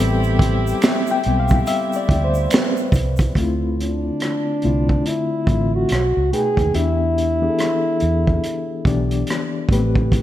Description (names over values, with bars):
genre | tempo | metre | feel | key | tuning
R&B, neo-soul | 71 BPM | 4/4 | swing 61% on 16ths | A minor | A4 = 438 Hz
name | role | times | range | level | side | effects
reed electric piano | accompaniment | 0.0-10.2 s | A2 to G5 | -22 LUFS | left 3 dB | overdrive, fast tremolo
clear saxophone section | stabs | 0.0-2.9 s | C4 to G4 | -27 LUFS | equal | digital delay
vintage muted fingered electric bass | bass | 0.0-10.2 s | A1 to E2 | -20 LUFS | right 1 dB | none
egg shaker and finger snaps | percussion | 0.2-3.3 s | none | -35 LUFS | right 5 dB | none
crunchy breakbeat drum kit | drums | 0.4-10.2 s | hi-hat, kick drum, rim click, snare drum | -20 LUFS | right 1 dB | gated reverb
warm French horn | melody | 3.8-9.3 s | D4 to G#4 | -21 LUFS | equal | none
room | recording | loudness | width
light reverb, small room ambience | bright 1980s-style digital production | -16 LUFS | side -13 dB against mid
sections
0.0-3.4 A section; 3.4-10.2 B section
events
reed electric piano solo 0.0-3.4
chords
0.0 Am9; 3.4 Dm9; 5.9 B7b13; 6.7 Em7; 9.7 Am9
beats
0.82 1.67 2.51 | 3.36 4.20 5.05 5.89 | 6.74 7.58 8.43 9.27 | 10.12